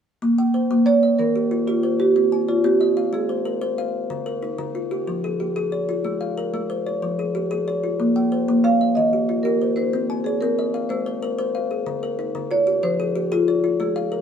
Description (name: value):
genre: southern african traditional, mbira-style interlocking cycle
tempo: 124 BPM (dotted quarters)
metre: 12/8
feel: straight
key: Bb equiheptatonic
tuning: A4 = 440 Hz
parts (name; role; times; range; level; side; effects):
- kalimba; arpeggios; 0.2-14.2 s; Db3+43c to Ab5+29c; -21 LUFS; left 1 dB; none
- marimba with soft mallets; melody; 0.9-3.9, 8.6-14.2 s; F4 to F5; -20 LUFS; right 2 dB; none
room: light reverb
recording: band playing live in one room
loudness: -19 LUFS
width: side -8 dB against mid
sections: 0.2-14.2 A section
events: none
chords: 0.2 Bbm; 1.2 Eb; 2.2 Cm; 3.1 Ab; 4.1 Db; 5.1 Fm; 6.0 Ab; 7.0 Fm; 8.0 Bbm; 9.0 Eb; 9.9 Cm; 10.9 Ab; 11.9 Db; 12.8 Fm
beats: | 0.21 0.70 1.19 1.67 | 2.16 2.65 3.13 3.62 | 4.10 4.59 5.08 5.56 | 6.05 6.53 7.02 7.50 | 7.99 8.47 8.96 9.44 | 9.93 10.41 10.90 11.38 | 11.87 12.35 12.83 13.32 | 13.80